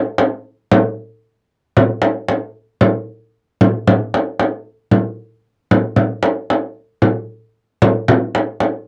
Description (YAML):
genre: arabic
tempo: 114 BPM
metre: 4/4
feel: straight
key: none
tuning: none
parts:
  - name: frame drum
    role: percussion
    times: 0.2-8.7 s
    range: none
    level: -16 LUFS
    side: equal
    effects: none
room: light reverb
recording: dry, close 1970s-style studio recording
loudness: -17 LUFS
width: mono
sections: 0.0-8.9 A section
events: none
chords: none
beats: 0.18 | 0.71 1.23 1.76 2.29 | 2.81 3.34 3.87 4.39 | 4.92 5.45 5.97 6.50 | 7.03 7.55 8.08 8.61